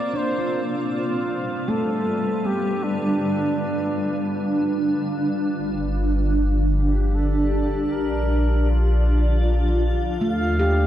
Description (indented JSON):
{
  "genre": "ambient",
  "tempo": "78 BPM",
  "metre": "3/4",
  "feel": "straight",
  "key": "unclear",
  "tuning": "A4 = 441 Hz",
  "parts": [
    { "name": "warm flugelhorn", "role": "melody", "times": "0.0-10.9 s", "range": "D4 to F5", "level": "-28 LUFS", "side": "equal", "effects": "diffuse ambient delay" },
    { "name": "granular cloud pad", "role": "sustained chords", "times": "0.0-10.9 s", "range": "G3 to A5", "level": "-24 LUFS", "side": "right 1 dB", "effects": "built-in reverb" },
    { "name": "handpan", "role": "arpeggios", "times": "0.1-4.9, 10.2-10.9 s", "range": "A3 to G4", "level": "-28 LUFS", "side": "equal", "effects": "diffuse ambient delay" },
    { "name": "warm sub bass", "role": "bass", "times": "5.6-10.9 s", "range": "G1 to Eb2", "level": "-20 LUFS", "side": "equal", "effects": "none" }
  ],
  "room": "moderate huge ambient reverb, RT60 9.3 s",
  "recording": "dark, warm production",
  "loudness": "-20 LUFS",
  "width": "side -12 dB against mid",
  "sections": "0.0-5.6 A section; 5.6-10.9 B section",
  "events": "fade-in on flugelhorn 5.6-10.9",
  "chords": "0.0 Bbsus2; 0.9 G7; 5.6 Gsus2; 7.9 Bb; 10.2 Eb",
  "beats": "0.13 | 0.89 1.66 2.43 | 3.21 3.99 4.78 | 5.58 6.36 7.14 | 7.91 8.67 9.44 | 10.21"
}